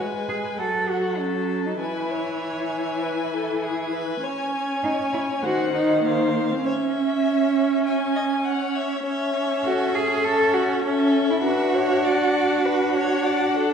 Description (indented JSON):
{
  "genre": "quick classical-period movement for string quartet",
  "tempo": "100 BPM",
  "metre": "4/4",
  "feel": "straight",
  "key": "A major from 9.0 s",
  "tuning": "A4 = 439 Hz",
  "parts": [
    { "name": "rich violin", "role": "melody", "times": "0.0-13.7 s", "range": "E5 to A5", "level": "-30 LUFS", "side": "left 5 dB", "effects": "none" },
    { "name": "rich violin", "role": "second line", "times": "0.0-13.7 s", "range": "G#4 to E5", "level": "-28 LUFS", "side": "left 4 dB", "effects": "none" },
    { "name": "rich viola", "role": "accompaniment", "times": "0.0-13.7 s", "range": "Eb3 to D4", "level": "-26 LUFS", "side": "right 2 dB", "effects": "none" },
    { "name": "rich cello", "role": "bass", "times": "0.0-13.5 s", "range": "A#3 to A4", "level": "-23 LUFS", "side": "right 2 dB", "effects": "none" }
  ],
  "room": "wet recital hall reverb, RT60 1.5 s",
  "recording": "heard from further back in the room",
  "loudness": "-20 LUFS",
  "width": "side -7 dB against mid",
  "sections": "0.0-13.7 A section",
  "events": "none",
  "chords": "0.0 E (rootless); 0.6 D#dim/F# (rootless); 1.8 E; 4.2 C#5; 5.4 Cdim/Eb; 6.7 C#m; 9.0 A/C#; 11.4 Bm/D",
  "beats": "0.59 1.20 | 1.81 2.42 3.03 3.64 | 4.24 4.84 5.44 6.05 | 6.65 7.25 7.85 8.45 | 9.05 9.64 10.24 10.84 | 11.44 12.04 12.65 13.25"
}